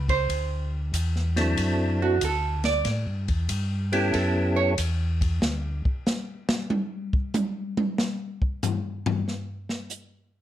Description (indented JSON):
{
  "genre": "soul jazz organ trio",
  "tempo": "94 BPM",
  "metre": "4/4",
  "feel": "swing 67% on 8ths",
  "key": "unclear",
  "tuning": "A4 = 440 Hz",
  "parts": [
    { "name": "vintage hollow-body jazz guitar", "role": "accompaniment", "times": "0.0-4.7 s", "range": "F#4 to D5", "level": "-26 LUFS", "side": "right 6 dB", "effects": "none" },
    { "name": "mellow tonewheel organ", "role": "bass", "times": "0.0-5.8 s", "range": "C#2 to A2", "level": "-26 LUFS", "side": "equal", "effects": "slow rotary speaker" },
    { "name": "open jazz drum kit", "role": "drums", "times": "0.1-10.1 s", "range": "hi-hat, kick drum, ride cymbal, snare drum, toms", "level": "-28 LUFS", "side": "left 1 dB", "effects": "none" },
    { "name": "percussive tonewheel organ", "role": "melody", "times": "1.4-4.7 s", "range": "F#3 to A4", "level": "-25 LUFS", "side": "equal", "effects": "slow rotary speaker" }
  ],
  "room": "light reverb",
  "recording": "none",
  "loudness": "-24 LUFS",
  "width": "side -12 dB against mid",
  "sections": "0.0-10.4 A section",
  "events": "hollow-body jazz guitar solo 0.0-10.4; drum solo 5.4-10.4",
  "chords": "0.3 D7; 2.9 A7; 5.4 N.C."
}